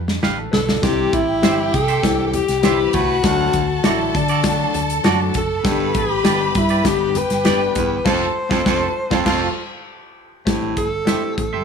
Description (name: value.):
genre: uptempo 1960s-style soul.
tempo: 100 BPM.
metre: 4/4.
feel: straight.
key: C major.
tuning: A4 = 440 Hz.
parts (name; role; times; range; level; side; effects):
hollow-body short-scale fingered electric bass; bass; 0.0-11.6 s; F1 to D3; -25 LUFS; equal; none.
natural country drum kit; drums; 0.1-11.5 s; crash cymbal, hi-hat, kick drum, snare drum; -22 LUFS; equal; none.
semi-hollow electric guitar; stabs; 0.2-11.6 s; C4 to F5; -25 LUFS; right 9 dB; none.
congas; percussion; 0.2-11.5 s; none; -32 LUFS; right 3 dB; none.
bright upright piano; accompaniment; 0.4-11.4 s; D3 to D5; -24 LUFS; left 9 dB; none.
breathy tenor saxophone; melody; 0.5-11.6 s; D4 to C5; -21 LUFS; left 2 dB; none.
rich studio string section; second line; 0.8-9.5 s; F4 to B5; -25 LUFS; right 1 dB; none.
bright baritone saxophone; riff; 0.8-10.9 s; D2 to C3; -25 LUFS; right 8 dB; none.
room: light reverb, studio reverb.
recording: none.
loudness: -16 LUFS.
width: side -6 dB against mid.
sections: 0.8-10.5 A section; 10.5-11.6 B section.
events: drum fill 0.0-0.8; band accent 8.1-10.5.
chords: 0.0 G7; 0.8 C; 3.2 D; 5.6 G; 8.1 F; 10.5 Am7.